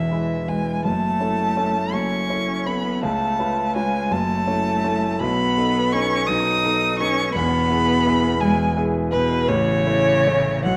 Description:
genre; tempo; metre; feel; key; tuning
classical, slow romantic movement for piano trio; 55 BPM (dotted quarters); 6/8; rubato; E major; A4 = 440 Hz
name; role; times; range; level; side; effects
rich violin; melody; 0.0-10.8 s; B4 to D#6; -24 LUFS; equal; none
rich cello; second line; 0.0-10.8 s; B2 to D#4; -27 LUFS; equal; none
warm concert grand piano; accompaniment; 0.0-10.8 s; E1 to C#5; -25 LUFS; equal; none
room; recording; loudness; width
moderate scoring stage reverb, RT60 1.5 s; dark, warm production; -21 LUFS; mono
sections
0.0-10.8 A section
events
none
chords
0.0 E; 0.8 F#m7; 3.0 C#7; 4.1 F#m7; 5.2 B7; 7.3 E; 9.5 A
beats
| 0.85 1.93 | 3.03 4.12 | 5.21 6.28 | 7.35 8.41 | 9.49 10.66

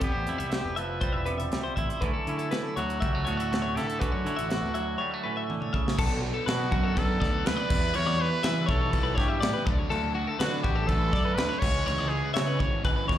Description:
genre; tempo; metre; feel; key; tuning
math rock and midwest emo; 122 BPM; 4/4; straight; unclear; A4 = 442 Hz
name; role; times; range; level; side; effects
bright trumpet; melody; 0.0-12.8 s; E4 to C#5; -31 LUFS; equal; slapback echo
clean electric guitar; accompaniment; 0.0-6.0 s; A2 to E4; -33 LUFS; right 6 dB; slapback echo
twelve-string electric guitar; arpeggios; 0.0-13.2 s; F#4 to E5; -33 LUFS; left 5 dB; slapback echo
growling picked electric bass; bass; 0.0-13.2 s; E1 to E3; -31 LUFS; equal; overdrive
crisp fusion drum kit; drums; 0.0-13.2 s; crash cymbal, hi-hat, kick drum, snare drum, toms; -30 LUFS; equal; none
crunchy overdriven guitar; riff; 6.0-13.2 s; B2 to E4; -34 LUFS; right 2 dB; slapback echo
room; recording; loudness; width
little or no reverb; live gig heard through the venue's PA, club reverb; -25 LUFS; side -11 dB against mid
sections
0.0-6.0 A section; 6.0-13.2 B section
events
drum fill 5.5-6.0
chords
0.0 Fmaj7sus2; 2.0 Dmaj9; 6.0 Bm7; 7.7 Em7; 9.7 Dmaj7; 11.6 C#m7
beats
| 0.02 0.52 1.02 1.52 | 2.02 2.51 3.01 3.51 | 4.00 4.50 4.99 5.49 | 5.98 6.47 6.97 7.46 | 7.95 8.44 8.93 9.42 | 9.91 10.40 10.89 11.38 | 11.87 12.36 12.84

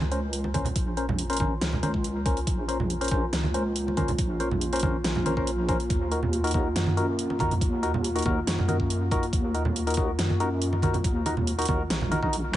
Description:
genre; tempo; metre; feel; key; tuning
deep dubstep; 140 BPM; 4/4; half-time; Bb minor; A4 = 442 Hz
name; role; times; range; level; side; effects
dark analog pad; sustained chords; 0.0-12.6 s; Bb3 to F4; -33 LUFS; equal; chorus
deep soft wobble bass; bass; 0.0-12.6 s; Bb1 to Gb2; -29 LUFS; equal; chorus
congas; percussion; 0.0-12.2 s; none; -31 LUFS; right 3 dB; none
percussive organ stab; stabs; 0.1-12.6 s; Db4 to C5; -30 LUFS; left 2 dB; chorus, dub echo
dubstep drum kit; drums; 0.1-12.6 s; handclaps, hi-hat, snare drum; -32 LUFS; right 1 dB; overdrive
electronic kick drum; drums; 0.5-12.6 s; none; -28 LUFS; equal; overdrive
room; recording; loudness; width
digital ambience; nothing above 10.7 kHz; -24 LUFS; side -13 dB against mid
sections
0.0-12.6 A section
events
none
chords
0.0 Bbmadd9; 5.9 Ebm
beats
0.33 | 0.76 1.19 1.61 2.04 | 2.47 2.90 3.33 3.76 | 4.19 4.62 5.04 5.47 | 5.90 6.33 6.76 7.19 | 7.62 8.04 8.47 8.90 | 9.33 9.76 10.19 10.62 | 11.04 11.47 11.90 12.33

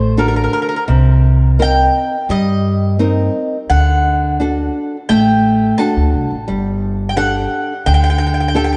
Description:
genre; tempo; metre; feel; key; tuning
greek folk, Greek bouzouki band; 86 BPM; 4/4; straight; G harmonic minor; A4 = 440 Hz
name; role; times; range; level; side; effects
Greek bouzouki; melody; 0.0-8.8 s; Bb4 to A5; -21 LUFS; equal; none
nylon-string guitar; accompaniment; 0.0-8.8 s; C3 to Bb4; -19 LUFS; equal; none
upright bass; bass; 0.0-8.8 s; G1 to G2; -18 LUFS; equal; none
room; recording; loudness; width
moderate plate reverb, RT60 3.3 s; heard from further back in the room, nothing above 10.5 kHz; -15 LUFS; mono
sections
0.0-8.8 A section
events
none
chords
0.0 D; 0.9 Cm7; 3.7 D; 6.5 Gsus2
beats
0.18 | 0.89 1.59 2.29 3.00 | 3.70 4.40 5.09 5.79 | 6.48 7.18 7.87 8.55

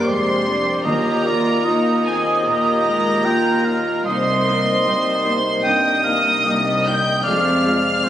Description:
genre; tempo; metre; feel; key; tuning
cinematic, emotional film score for orchestra; 75 BPM; 4/4; rubato; Eb major; A4 = 440 Hz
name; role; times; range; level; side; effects
rich studio violin section; melody; 0.0-8.1 s; Ab5 to G6; -22 LUFS; right 1 dB; none
mellow cor anglais; second line; 0.0-8.1 s; C5 to G5; -21 LUFS; right 1 dB; none
warm studio violin section; second line; 0.0-8.1 s; Ab4 to G5; -28 LUFS; left 2 dB; none
rich studio viola section; accompaniment; 0.0-8.1 s; G3 to G4; -25 LUFS; right 1 dB; none
warm concert grand piano; accompaniment; 0.0-8.1 s; C2 to Ab4; -26 LUFS; left 2 dB; none
warm French horn section; sustained chords; 0.0-8.1 s; Ab3 to G4; -25 LUFS; left 2 dB; none
dark studio double bass section; bass; 0.1-8.1 s; F1 to Eb2; -33 LUFS; right 1 dB; none
warm studio cello section; bass; 0.1-8.1 s; C2 to F2; -27 LUFS; right 1 dB; none
timpani; percussion; 0.9-2.0 s; Eb3; -28 LUFS; left 1 dB; none
room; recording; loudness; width
moderate scoring stage reverb, RT60 1.6 s; recorded on a phone in the room, club reverb; -16 LUFS; side -11 dB against mid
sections
0.0-8.1 A section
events
none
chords
0.0 Gm; 0.9 Ebsus2; 4.1 Cm7; 7.3 Fm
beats
0.05 | 0.85 1.65 2.45 3.26 | 4.06 4.85 5.65 6.46 | 7.25 8.05

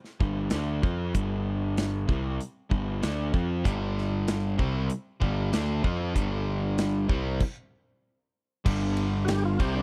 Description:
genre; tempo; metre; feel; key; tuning
classic rock; 96 BPM; 4/4; straight; unclear; A4 = 442 Hz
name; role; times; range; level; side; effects
big rock drum kit; drums; 0.0-9.7 s; crash cymbal, hi-hat, kick drum, ride cymbal, snare drum; -31 LUFS; equal; none
overdriven semi-hollow guitar; riff; 0.2-9.8 s; G2 to F4; -34 LUFS; equal; none
fuzz picked electric bass; bass; 0.2-9.8 s; G1 to F2; -32 LUFS; equal; overdrive
crunchy overdriven guitar; riff; 3.6-9.8 s; G2 to F4; -34 LUFS; equal; none
overdriven tonewheel organ; melody; 9.2-9.8 s; D4 to G4; -34 LUFS; equal; slow rotary speaker, chorus vibrato
room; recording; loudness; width
small room ambience; dry, close 1970s-style studio recording; -28 LUFS; mono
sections
0.0-8.7 A section; 8.7-9.8 B section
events
stop 7.4-8.7; tonewheel organ solo 8.7-9.8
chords
0.0 G5; 8.0 N.C.; 8.7 G5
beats
0.53 | 1.15 1.78 2.40 3.03 | 3.66 4.28 4.91 5.54 | 6.16 6.79 7.41 8.04 | 8.66 9.29

